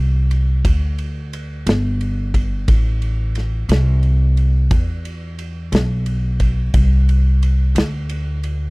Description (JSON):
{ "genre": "slow blues", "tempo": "59 BPM (dotted quarters)", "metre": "12/8", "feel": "straight", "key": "A minor", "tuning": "A4 = 440 Hz", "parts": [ { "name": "upright bass", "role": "bass", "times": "0.0-8.7 s", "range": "G1 to E2", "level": "-16 LUFS", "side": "equal", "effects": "none" }, { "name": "natural country drum kit", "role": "drums", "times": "0.3-8.6 s", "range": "kick drum, ride cymbal, snare drum", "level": "-19 LUFS", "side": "equal", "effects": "none" } ], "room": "little or no reverb", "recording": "dry, close 1970s-style studio recording", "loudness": "-15 LUFS", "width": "side -28 dB against mid", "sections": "0.0-8.7 A section", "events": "none", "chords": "none" }